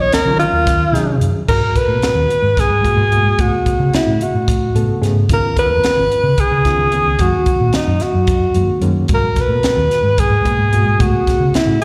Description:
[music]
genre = electric jazz fusion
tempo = 221 BPM (eighths)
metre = 7/8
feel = straight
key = G# dorian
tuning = A4 = 437 Hz
[part]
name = breathy alto saxophone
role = melody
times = 0.0-11.8 s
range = D#4 to Db5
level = -18 LUFS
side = equal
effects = slapback echo
[part]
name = bright reed electric piano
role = accompaniment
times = 0.0-11.8 s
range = A#2 to A4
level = -24 LUFS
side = equal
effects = fast tremolo, slapback echo
[part]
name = hollow-body short-scale fingered electric bass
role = bass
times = 0.0-11.8 s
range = G#1 to Eb3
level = -19 LUFS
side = equal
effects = none
[part]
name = crisp fusion drum kit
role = drums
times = 0.1-11.8 s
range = crash cymbal, hi-hat, kick drum, snare drum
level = -21 LUFS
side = equal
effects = none
[sound]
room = light reverb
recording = live gig heard through the venue's PA, recital hall reverb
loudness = -15 LUFS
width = mono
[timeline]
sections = 0.0-1.5 A section; 1.5-11.8 B section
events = alto saxophone solo 0.0-1.5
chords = 0.0 Ebm9; 1.5 G#m9; 3.4 Amaj9; 5.3 C#9; 7.2 F#69; 9.1 G#m9; 11.0 Amaj9

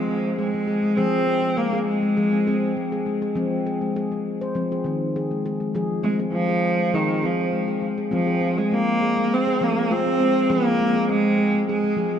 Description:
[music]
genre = world meditative, meditative tuned percussion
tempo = 101 BPM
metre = 4/4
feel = straight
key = F minor pentatonic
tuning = A4 = 440 Hz
[part]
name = bright cello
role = melody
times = 0.0-12.2 s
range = Eb3 to C4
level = -22 LUFS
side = right 2 dB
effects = ping-pong delay
[part]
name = handpan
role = arpeggios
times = 0.0-12.2 s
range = Eb3 to C5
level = -23 LUFS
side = left 2 dB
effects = none
[sound]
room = wet concert hall reverb, RT60 1.8 s, small room ambience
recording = dark, warm production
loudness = -20 LUFS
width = side -8 dB against mid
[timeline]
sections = 0.0-8.1 A section; 8.1-12.2 B section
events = none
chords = 0.0 Fm; 3.4 Ab/F; 5.7 Fm

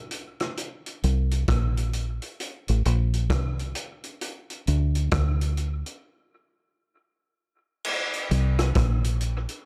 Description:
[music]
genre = dub reggae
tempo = 66 BPM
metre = 4/4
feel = swing 63% on 16ths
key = unclear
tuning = A4 = 437 Hz
[part]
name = vintage drum kit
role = drums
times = 0.1-9.6 s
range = crash cymbal, hi-hat, kick drum, rim click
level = -31 LUFS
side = equal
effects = none
[part]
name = deep dub fingered electric bass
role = bass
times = 1.0-9.5 s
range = A1 to D2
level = -25 LUFS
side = equal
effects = none
[sound]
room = little or no reverb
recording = dark, warm production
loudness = -26 LUFS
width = mono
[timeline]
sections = 0.0-7.8 A section; 7.8-9.7 B section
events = break 6.0-7.8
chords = none

